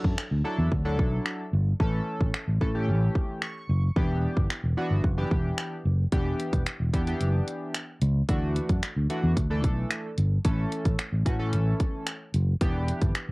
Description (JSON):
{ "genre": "dance-pop", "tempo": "111 BPM", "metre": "4/4", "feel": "straight", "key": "D major", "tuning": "A4 = 440 Hz", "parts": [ { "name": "chorused retro synth keys", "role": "accompaniment", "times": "0.0-13.1 s", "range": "E3 to C#6", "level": "-32 LUFS", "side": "equal", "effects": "sidechain pumping, cassette tape" }, { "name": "fingered electric bass", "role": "bass", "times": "0.0-13.3 s", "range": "E1 to A2", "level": "-25 LUFS", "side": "equal", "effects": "sidechain pumping" }, { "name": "house drum kit", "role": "drums", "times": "0.0-13.3 s", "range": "finger snaps, hi-hat, kick drum", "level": "-27 LUFS", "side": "equal", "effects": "none" } ], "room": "little or no reverb", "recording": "home recording on cassette", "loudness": "-24 LUFS", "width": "side -24 dB against mid", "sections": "0.0-13.3 A section", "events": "synth keys fill 3.2-4.0", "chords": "0.0 Dadd9; 1.8 A; 4.0 Em7; 8.3 Dadd9; 10.4 A; 12.6 Em7" }